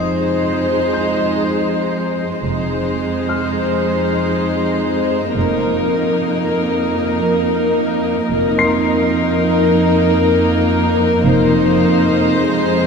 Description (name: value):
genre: cinematic, suspense film score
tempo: free time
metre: none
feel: none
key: F minor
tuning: A4 = 440 Hz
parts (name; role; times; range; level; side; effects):
- warm studio violin section; melody; 0.0-12.9 s; Bb4 to C5; -20 LUFS; left 5 dB; none
- warm chamber viola section; accompaniment; 0.0-12.9 s; Ab3 to Eb4; -17 LUFS; equal; none
- dark studio cello section; bass; 0.0-12.9 s; F2; -20 LUFS; right 3 dB; none
- dark concert grand piano; texture; 0.0-11.3 s; Eb5 to C7; -26 LUFS; left 4 dB; none
- warm chamber double bass section; bass; 2.4-11.8 s; F1; -25 LUFS; right 1 dB; none
room: wet cathedral reverb, RT60 4.9 s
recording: minimal, uncompressed stereo recording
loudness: -14 LUFS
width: side -5 dB against mid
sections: 0.0-12.9 A section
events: none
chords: 0.0 Fm7; 5.4 Ebsus2/F; 11.2 Fm7